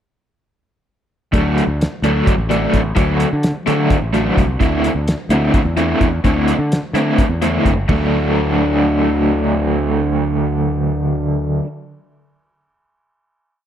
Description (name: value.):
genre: psychedelic rock.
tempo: 256 BPM (eighths).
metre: 7/8.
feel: straight.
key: D mixolydian.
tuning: A4 = 440 Hz.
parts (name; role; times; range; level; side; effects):
crunchy overdriven guitar; riff; 1.3-11.7 s; D3 to E4; -16 LUFS; equal; tremolo.
growling fingered electric bass; bass; 1.3-11.6 s; F#1 to D3; -20 LUFS; equal; overdrive.
cloth-damped thuddy drum kit; drums; 1.3-8.0 s; hi-hat, kick drum, ride cymbal, snare drum, toms; -18 LUFS; equal; none.
room: light reverb, small room ambience.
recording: none.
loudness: -14 LUFS.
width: side -9 dB against mid.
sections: 1.3-7.9 groove; 7.9-11.2 final chord.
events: none.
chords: 1.3 D; 4.6 Am/D; 7.9 D.